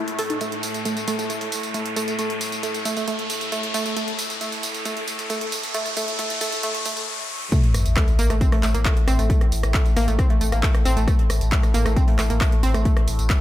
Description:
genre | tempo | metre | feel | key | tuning
driving peak-time techno | 135 BPM | 4/4 | straight | unclear | A4 = 438 Hz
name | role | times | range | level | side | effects
analog pluck | riff | 0.0-13.4 s | A3 to A4 | -27 LUFS | right 2 dB | chorus, sidechain pumping, tape echo
overtone-sweeping drone | drone | 0.0-13.4 s | A2 to A3 | -32 LUFS | left 1 dB | chorus, built-in reverb, sidechain pumping
riser and sub drop | sound effects | 0.0-9.3 s | none | -28 LUFS | left 1 dB | none
techno drum kit | drums | 0.1-13.4 s | handclaps, hi-hat, rim click, tambourine | -28 LUFS | right 1 dB | sidechain pumping on hats, sidechain pumping on perc
electronic kick drum | drums | 7.5-13.4 s | none | -19 LUFS | equal | none
warm sub bass | bass | 7.7-13.3 s | A1 | -22 LUFS | equal | tube saturation, sidechain pumping, low-pass filter
room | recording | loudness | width
light reverb | high-pass filter | -19 LUFS | side -13 dB against mid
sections
0.0-7.5 A section; 7.5-13.4 B section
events
build-up 0.0-7.5; riser 0.0-7.5; filter sweep on synth arpeggio sound 0.0-7.5; filter sweep 0.0-7.5; stop 7.1-7.5; drop 7.5-13.4; impact 7.5-9.3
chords
none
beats
| 0.41 0.85 1.30 1.74 | 2.19 2.63 3.08 3.52 | 3.97 4.41 4.85 5.30 | 5.74 6.19 6.63 7.08 | 7.52 7.97 8.41 8.85 | 9.30 9.74 10.19 10.63 | 11.08 11.52 11.97 12.41 | 12.85 13.30

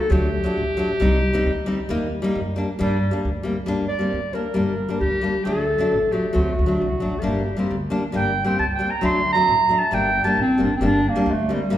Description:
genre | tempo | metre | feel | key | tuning
klezmer | 134 BPM | 2/4 | straight | G harmonic minor | A4 = 436 Hz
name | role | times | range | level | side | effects
mellow clarinet | melody | 0.0-11.8 s | G3 to C6 | -22 LUFS | right 1 dB | none
nylon-string guitar | accompaniment | 0.1-11.8 s | F#3 to Eb4 | -23 LUFS | left 1 dB | none
upright bass | bass | 0.1-11.8 s | G1 to G2 | -26 LUFS | equal | none
room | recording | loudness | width
wet recital hall reverb, RT60 1.7 s | recorded in a church or concert hall | -19 LUFS | side -12 dB against mid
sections
0.0-3.7 A section; 3.7-10.8 B section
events
clarinet solo 3.7-10.8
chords
0.1 D; 1.0 Cm; 1.9 Eb; 2.8 Gm; 5.5 D; 7.3 Gm; 9.0 D; 9.9 Gm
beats
| 0.11 0.56 | 1.00 1.45 | 1.90 2.34 | 2.79 3.23 | 3.68 4.13 | 4.58 5.02 | 5.47 5.92 | 6.36 6.81 | 7.25 7.70 | 8.15 8.59 | 9.04 9.48 | 9.93 10.37 | 10.82 11.26 | 11.71

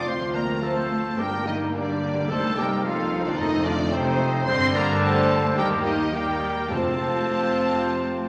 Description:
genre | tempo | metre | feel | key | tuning
quick classical-period movement for symphony orchestra | 108 BPM | 4/4 | rubato | unclear | A4 = 440 Hz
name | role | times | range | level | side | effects
dark studio violin section | melody | 0.0-8.3 s | C5 to C6 | -32 LUFS | equal | none
hollow flute section | second line | 0.0-8.3 s | Eb4 to F5 | -32 LUFS | equal | none
mellow clarinet | second line | 0.0-8.3 s | C4 to C5 | -31 LUFS | equal | none
warm chamber violin section | second line | 0.0-8.3 s | G3 to G4 | -36 LUFS | equal | none
warm symphonic viola section | accompaniment | 0.0-8.3 s | C3 to C4 | -32 LUFS | equal | none
mellow French horn section | sustained chords | 0.0-8.3 s | G3 to F4 | -34 LUFS | equal | none
dark chamber cello section | bass | 0.1-8.3 s | C3 to C4 | -33 LUFS | equal | none
dark chamber double bass section | bass | 0.1-8.3 s | G1 to G2 | -35 LUFS | equal | none
timpani | percussion | 3.4-7.6 s | F2 | -40 LUFS | equal | none
room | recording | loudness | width
wet scoring stage reverb, RT60 1.6 s | none | -24 LUFS | mono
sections
0.0-8.3 A section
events
none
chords
0.1 Dm7; 1.2 Gm; 2.3 Cm7; 3.4 F7; 4.5 Gm; 5.6 Eb; 6.7 F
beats
| 0.06 0.62 1.18 1.74 | 2.29 2.85 3.39 3.94 | 4.48 5.03 5.58 6.14 | 6.72 7.31 7.89

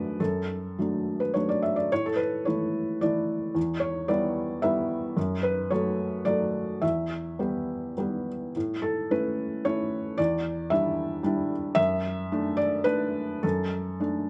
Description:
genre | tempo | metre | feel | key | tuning
neoclassical minimalist piano | 102-115 BPM | 3/4 | rubato | unclear | A4 = 441 Hz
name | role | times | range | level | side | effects
felt-muted upright piano | solo | 0.0-14.3 s | E2 to E5 | -28 LUFS | equal | none
room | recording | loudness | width
light reverb | nothing above 10.7 kHz | -28 LUFS | mono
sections
0.0-8.6 A section; 8.6-14.3 A section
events
none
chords
0.0 D/F#; 1.9 A; 3.6 Em7; 5.2 D/F#; 6.8 Em; 8.6 A; 10.2 Em7; 11.8 D/F#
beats
| 0.19 0.77 1.34 | 1.91 2.46 3.02 | 3.56 4.09 4.62 | 5.16 5.70 6.24 | 6.82 7.40 7.98 | 8.55 9.10 9.64 | 10.18 10.72 11.25 | 11.77 12.31 12.87 | 13.43 14.01

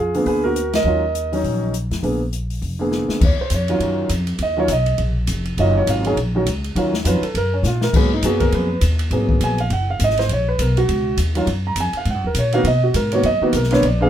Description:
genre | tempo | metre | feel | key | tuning
jazz piano trio | 203 BPM | 4/4 | swing 60% on 8ths | Eb minor | A4 = 445 Hz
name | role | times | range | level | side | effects
warm concert grand piano | melody | 0.0-14.1 s | D3 to Bb5 | -19 LUFS | right 1 dB | none
upright bass | bass | 0.0-14.1 s | F1 to B2 | -20 LUFS | equal | none
open jazz drum kit | drums | 0.1-13.9 s | crash cymbal, hi-hat, kick drum, ride cymbal, snare drum | -25 LUFS | left 2 dB | none
room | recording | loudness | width
light reverb | minimal, uncompressed stereo recording | -17 LUFS | side -10 dB against mid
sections
0.0-3.2 A section; 3.2-14.1 B section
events
band accent 0.7; drum fill 2.9, 7.6; grand piano solo 3.2-14.1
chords
0.0 Bb7b9; 0.9 Ebm7; 2.0 Bb7b9; 3.2 Ebm9; 7.9 Abm9; 10.3 Ebm9; 12.7 Bmaj7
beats
0.26 0.56 | 0.85 1.15 1.44 1.74 | 2.04 2.33 2.62 2.92 | 3.22 3.51 3.81 4.10 | 4.40 4.69 4.99 5.28 | 5.58 5.87 6.17 6.46 | 6.76 7.05 7.35 7.64 | 7.94 8.23 8.53 8.82 | 9.12 9.41 9.71 10.00 | 10.29 10.59 10.88 11.18 | 11.47 11.77 12.06 12.36 | 12.65 12.95 13.24 13.54 | 13.84

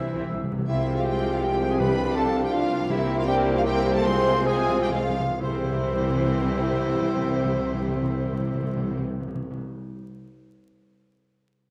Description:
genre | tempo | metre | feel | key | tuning
classical, dramatic, fast romantic movement for symphony orchestra | 118-166 BPM | 3/4 | rubato | C major | A4 = 441 Hz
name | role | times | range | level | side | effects
warm symphonic violin section | melody | 0.0-9.0 s | C5 to C6 | -37 LUFS | equal | none
mellow flute section | second line | 0.0-9.0 s | C5 to E6 | -36 LUFS | equal | none
warm clarinet | second line | 0.0-9.0 s | E4 to C5 | -35 LUFS | equal | none
warm oboe | second line | 0.0-0.3, 5.4-9.0 s | E4 to E5 | -40 LUFS | equal | none
warm symphonic violin section | second line | 0.0-9.0 s | E4 to Ab4 | -37 LUFS | equal | none
dark bassoon | accompaniment | 0.0-9.0 s | Ab3 to G4 | -34 LUFS | equal | none
rich symphonic viola section | accompaniment | 0.0-9.0 s | C3 to D4 | -37 LUFS | equal | none
concert harp | arpeggios | 0.0-9.8 s | C3 to Ab5 | -36 LUFS | equal | none
rich symphonic cello section | bass | 0.0-9.0 s | C3 to E3 | -36 LUFS | equal | none
rich symphonic double bass section | bass | 0.0-9.0 s | C2 | -36 LUFS | equal | none
warm tuba | bass | 0.0-9.0 s | C2 | -34 LUFS | equal | none
timpani | percussion | 0.0-9.7 s | C3 | -33 LUFS | equal | none
dark French horn section | sustained chords | 0.7-9.0 s | C4 to G4 | -35 LUFS | equal | none
mellow trombone section | sustained chords | 0.7-9.0 s | C3 to Bb3 | -36 LUFS | equal | none
room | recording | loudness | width
wet scoring stage reverb, RT60 1.6 s | vinyl crackle | -24 LUFS | mono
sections
0.7-5.4 A section; 5.4-8.2 B section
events
timpani fill 0.0-0.7, 4.1-5.4; slowing down 2.3-5.4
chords
0.0 C; 0.7 Fm/C; 1.8 G7/C; 2.9 C7; 4.1 Fm/C; 5.4 C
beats
0.33 | 0.69 1.07 1.44 | 1.80 2.17 2.53 | 2.90 3.27 3.65 | 4.06 4.48 4.93 | 5.42 5.89 6.36 | 6.83 7.30 7.77

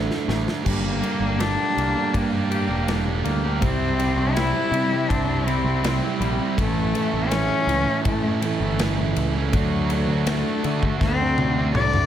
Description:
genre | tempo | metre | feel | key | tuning
quiet-loud alternative rock | 81 BPM | 4/4 | straight | G dorian | A4 = 439 Hz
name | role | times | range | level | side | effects
twangy electric guitar | arpeggios | 0.0-6.6 s | G2 to G4 | -30 LUFS | left 4 dB | harmonic tremolo, slapback echo
thick fuzz guitar | riff | 0.0-12.1 s | G2 to G4 | -26 LUFS | right 7 dB | distortion
growling picked electric bass | bass | 0.0-12.1 s | E1 to D3 | -25 LUFS | left 1 dB | overdrive
big rock drum kit | drums | 0.1-12.1 s | crash cymbal, kick drum, ride cymbal, snare drum, toms | -27 LUFS | left 1 dB | none
rich cello | melody | 0.7-12.1 s | F#3 to D5 | -25 LUFS | left 4 dB | slapback echo
room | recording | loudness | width
light reverb, studio ambience | none | -20 LUFS | side -10 dB against mid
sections
0.7-12.1 A section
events
drum fill 0.0-0.7, 11.0-12.1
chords
0.0 D5; 0.7 Gm; 3.6 C; 6.6 A; 9.5 D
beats
| 0.66 1.40 2.14 2.88 | 3.62 4.36 5.10 5.84 | 6.58 7.32 8.06 8.79 | 9.53 10.27 11.01 11.74

